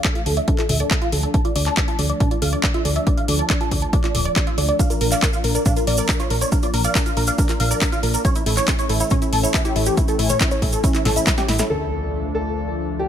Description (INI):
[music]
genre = uplifting trance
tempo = 139 BPM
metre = 4/4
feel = straight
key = D harmonic minor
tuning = A4 = 435 Hz
[part]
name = supersaw stab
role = melody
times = 0.0-11.7 s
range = E4 to E6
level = -24 LUFS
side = equal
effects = phaser, sidechain pumping, low-pass filter, tape echo
[part]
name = lush unison pad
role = sustained chords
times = 0.0-13.1 s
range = E3 to D4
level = -28 LUFS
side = left 2 dB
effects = chorus, sidechain pumping
[part]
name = wide unison pluck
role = arpeggios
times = 0.0-11.7 s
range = C#4 to E5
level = -28 LUFS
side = right 4 dB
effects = sidechain pumping, ping-pong delay
[part]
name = electronic kick drum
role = drums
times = 0.0-11.4 s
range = none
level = -20 LUFS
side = equal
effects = none
[part]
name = house drum kit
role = drums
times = 0.0-11.7 s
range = handclaps, hi-hat, snare drum, toms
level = -24 LUFS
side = left 1 dB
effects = sidechain pumping on hats, sidechain pumping on cymbals, sidechain pumping on toms
[part]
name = solid FM bass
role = bass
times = 0.3-13.1 s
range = D1 to D2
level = -23 LUFS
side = equal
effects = sidechain pumping
[part]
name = tube shaker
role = percussion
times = 4.8-11.7 s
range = none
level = -29 LUFS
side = right 3 dB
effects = none
[part]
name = warm concert grand piano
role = second line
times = 11.7-13.1 s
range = G4 to A4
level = -26 LUFS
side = left 1 dB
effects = ping-pong delay
[part]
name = impact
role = sound effects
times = 11.7-13.1 s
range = none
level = -35 LUFS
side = equal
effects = none
[sound]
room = digital ambience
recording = none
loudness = -17 LUFS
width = side -9 dB against mid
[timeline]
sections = 0.0-11.7 A section; 11.7-13.1 B section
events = filter sweep on synth pluck 0.0-11.7; filter sweep on analog synth pad 0.0-11.7; drum fill 11.1-11.7; impact 11.7-13.1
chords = 0.0 Dm; 4.8 Bb; 8.2 A; 11.7 Dm